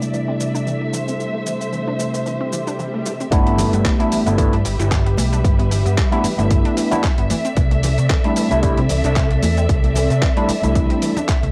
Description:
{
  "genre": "nu-disco, nu disco",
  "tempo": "113 BPM",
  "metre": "4/4",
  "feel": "swing 55% on 16ths",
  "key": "G major",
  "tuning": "A4 = 441 Hz",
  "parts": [
    { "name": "overdriven tine electric piano", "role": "accompaniment", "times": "0.0-11.1 s", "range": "C3 to E4", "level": "-23 LUFS", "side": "equal", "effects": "phaser, cassette tape, analog delay" },
    { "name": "muted studio string section", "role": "sustained chords", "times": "0.0-11.5 s", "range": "C3 to E5", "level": "-27 LUFS", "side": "equal", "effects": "sidechain pumping, cassette tape" },
    { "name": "analog pluck", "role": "arpeggios", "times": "0.0-11.5 s", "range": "E3 to E4", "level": "-31 LUFS", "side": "equal", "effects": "chorus, sidechain pumping, cassette tape, tape echo" },
    { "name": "dusty soul sampler-style drum kit", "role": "drums", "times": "0.0-11.5 s", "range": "handclaps, hi-hat, shaker", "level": "-30 LUFS", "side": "equal", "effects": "cassette tape" },
    { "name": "swell and impact", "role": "sound effects", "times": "2.5-5.4 s", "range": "none", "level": "-34 LUFS", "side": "equal", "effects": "none" },
    { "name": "overdriven fingered electric bass", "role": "bass", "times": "3.3-11.5 s", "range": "G1 to C3", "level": "-21 LUFS", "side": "equal", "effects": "none" },
    { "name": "electronic kick drum", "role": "drums", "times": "3.3-11.4 s", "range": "none", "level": "-20 LUFS", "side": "equal", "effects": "overdrive, cassette tape" },
    { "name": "congas", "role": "percussion", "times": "3.6-11.3 s", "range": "none", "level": "-29 LUFS", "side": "equal", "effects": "none" }
  ],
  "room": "light reverb",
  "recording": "home recording on cassette",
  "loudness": "-18 LUFS",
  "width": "mono",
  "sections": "0.0-3.3 A section; 3.3-11.5 B section",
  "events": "filter sweep on tine electric piano 0.0-3.3; filter sweep on synth arpeggio sound 0.0-3.3; swell 2.5-3.3; drop 3.3-11.5; impact 3.3-5.4",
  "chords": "0.0 C69; 3.3 G6; 7.3 C69"
}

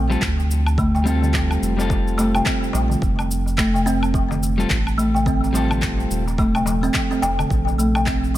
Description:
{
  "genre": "organic downtempo",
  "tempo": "107 BPM",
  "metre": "4/4",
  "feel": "swing 60% on 16ths",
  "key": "F mixolydian",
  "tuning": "A4 = 441 Hz",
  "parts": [
    { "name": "kalimba", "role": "arpeggios", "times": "0.0-8.4 s", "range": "C3 to C4", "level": "-21 LUFS", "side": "equal", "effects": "ping-pong delay" },
    { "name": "round analog bass", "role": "bass", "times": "0.0-8.4 s", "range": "Eb1 to D2", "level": "-22 LUFS", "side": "equal", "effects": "sidechain pumping" },
    { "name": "electric guitar at the edge of break-up", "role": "accompaniment", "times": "0.1-6.2 s", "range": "G3 to A4", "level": "-27 LUFS", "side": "left 3 dB", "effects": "vintage 12-bit sampler grit, sidechain pumping, ping-pong delay" },
    { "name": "electronic shaker, handclaps and woodblock", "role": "drums", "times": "0.1-8.4 s", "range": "none", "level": "-27 LUFS", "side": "equal", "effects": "none" },
    { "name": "electronic kick drum", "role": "drums", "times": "0.2-8.2 s", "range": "none", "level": "-24 LUFS", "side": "equal", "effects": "overdrive" },
    { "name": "darbuka", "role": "percussion", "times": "0.8-8.0 s", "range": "none", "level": "-32 LUFS", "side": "left 3 dB", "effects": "none" }
  ],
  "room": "light reverb, digital ambience",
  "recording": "none",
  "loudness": "-17 LUFS",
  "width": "side -14 dB against mid",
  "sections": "0.0-8.4 A section",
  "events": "none",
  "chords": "0.0 Bbmaj7; 3.0 F7; 7.5 Bbmaj7(no3)"
}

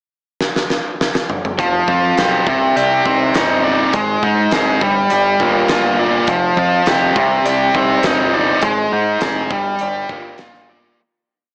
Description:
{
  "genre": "classic rock",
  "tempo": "102 BPM",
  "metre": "4/4",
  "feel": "straight",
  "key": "C minor",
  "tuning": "A4 = 445 Hz",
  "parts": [
    { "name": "huge arena drum kit", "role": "drums", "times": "0.4-10.6 s", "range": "hi-hat, kick drum, snare drum, toms", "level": "-24 LUFS", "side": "equal", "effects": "none" },
    { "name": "crunchy overdriven guitar", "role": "riff", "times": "1.6-11.0 s", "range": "C3 to D5", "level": "-23 LUFS", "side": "equal", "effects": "spring reverb" },
    { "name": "tight distorted guitar", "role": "riff", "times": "1.6-11.0 s", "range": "C3 to D5", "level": "-17 LUFS", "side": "equal", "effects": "distortion" },
    { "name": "growling picked electric bass", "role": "bass", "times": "1.6-10.9 s", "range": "F1 to Ab2", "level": "-24 LUFS", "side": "equal", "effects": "overdrive" }
  ],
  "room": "light reverb, studio reverb",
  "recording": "small speaker sound",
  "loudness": "-16 LUFS",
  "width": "mono",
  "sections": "0.0-1.6 pickup bar; 1.6-11.0 verse",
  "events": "drum fill 0.4-1.6; fade-out 8.6-11.0",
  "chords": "0.0 N.C.; 1.6 Fsus2; 2.5 Cmadd9; 3.9 Ab; 4.8 Gm7; 6.3 Fsus2; 7.2 Cmadd9; 8.6 Ab; 9.5 Gm7"
}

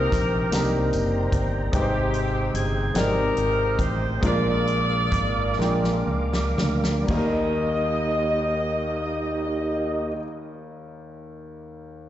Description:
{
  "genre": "slow gospel",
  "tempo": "38-50 BPM (dotted quarters)",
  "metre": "6/8",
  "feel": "straight",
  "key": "Eb major",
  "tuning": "A4 = 439 Hz",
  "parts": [
    { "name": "clear saxophone section", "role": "melody", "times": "0.0-10.1 s", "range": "C4 to Eb5", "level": "-26 LUFS", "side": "equal", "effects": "slapback echo" },
    { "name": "warm grand piano", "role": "accompaniment", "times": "0.0-12.1 s", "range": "Eb2 to G5", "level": "-28 LUFS", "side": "left 1 dB", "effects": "slapback echo" },
    { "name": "mellow tonewheel organ", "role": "sustained chords", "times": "0.0-10.1 s", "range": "Bb3 to D6", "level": "-30 LUFS", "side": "right 2 dB", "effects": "slow rotary speaker, chorus vibrato" },
    { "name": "fingered electric bass", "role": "bass", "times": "0.0-10.1 s", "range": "Gb1 to Eb2", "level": "-26 LUFS", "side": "equal", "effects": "none" },
    { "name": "natural country drum kit", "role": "drums", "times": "0.1-7.3 s", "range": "crash cymbal, hi-hat, kick drum, snare drum", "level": "-27 LUFS", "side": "equal", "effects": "none" },
    { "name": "tambourine", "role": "percussion", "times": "0.1-1.3 s", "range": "none", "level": "-40 LUFS", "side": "right 2 dB", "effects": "none" }
  ],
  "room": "light reverb, studio reverb",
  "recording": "live gig heard through the venue's PA, recital hall reverb, nothing above 8.0 kHz",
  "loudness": "-21 LUFS",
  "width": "side -12 dB against mid",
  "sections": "0.0-7.1 A section; 7.1-10.3 B section",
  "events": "slowing down 1.7-7.1; drum fill 5.6-7.1",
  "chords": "0.0 Cm7; 1.7 Abmaj7; 4.2 Bb7; 7.1 Eb"
}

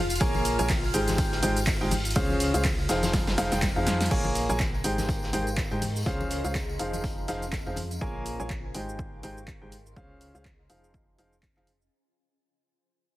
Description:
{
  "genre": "piano house",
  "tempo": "123 BPM",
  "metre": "4/4",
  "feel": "swing 57% on 16ths",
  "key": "F minor",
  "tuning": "A4 = 441 Hz",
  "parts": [
    { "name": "string machine, violins", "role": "sustained chords", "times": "0.0-4.1 s", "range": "F4 to F5", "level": "-36 LUFS", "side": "equal", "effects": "ensemble chorus, sidechain pumping" },
    { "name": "organ-like FM bass", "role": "bass", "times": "0.0-11.9 s", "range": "F1 to Ab2", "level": "-32 LUFS", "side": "equal", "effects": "sidechain pumping" },
    { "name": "punchy analog drum machine", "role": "drums", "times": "0.1-11.9 s", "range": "crash cymbal, handclaps, hi-hat, ride cymbal, shaker, snare drum", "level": "-33 LUFS", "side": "right 1 dB", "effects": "overdrive" },
    { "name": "tambourine and congas", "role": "percussion", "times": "0.1-8.0 s", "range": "none", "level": "-37 LUFS", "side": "left 3 dB", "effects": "none" },
    { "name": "clear baby grand piano", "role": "riff", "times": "0.2-11.7 s", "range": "Db3 to Ab5", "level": "-29 LUFS", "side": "equal", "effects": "sidechain pumping, digital delay" },
    { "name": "electronic kick drum", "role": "drums", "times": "0.2-11.5 s", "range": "none", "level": "-30 LUFS", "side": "equal", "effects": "overdrive" },
    { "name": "raw garage drum kit", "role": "drums", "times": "0.2-7.9 s", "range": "hi-hat, snare drum", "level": "-39 LUFS", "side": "equal", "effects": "high-pass filter on hats, high-pass filter on snare, high-pass filter on room" },
    { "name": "granular cloud pad", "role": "texture", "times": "4.7-11.9 s", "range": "Ab4 to Eb5", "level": "-43 LUFS", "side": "left 1 dB", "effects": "built-in reverb, sidechain pumping" }
  ],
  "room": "small room ambience",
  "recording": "heavily compressed radio sound, multiband compression",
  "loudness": "-25 LUFS",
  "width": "side -16 dB against mid",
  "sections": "0.0-4.1 A section; 4.1-11.9 B section",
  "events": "drop 0.0-4.1; drum fill 3.1-4.1; fade-out 4.1-11.9",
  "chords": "0.2 Bbm7; 1.2 Abmaj7; 2.2 Dbmaj7; 3.1 Fm7; 4.1 Bbm7; 5.1 Abmaj7; 6.1 Dbmaj7; 7.0 Fm7; 8.0 Bbm7; 9.0 Abmaj7; 10.0 Dbmaj7; 10.9 Fm7"
}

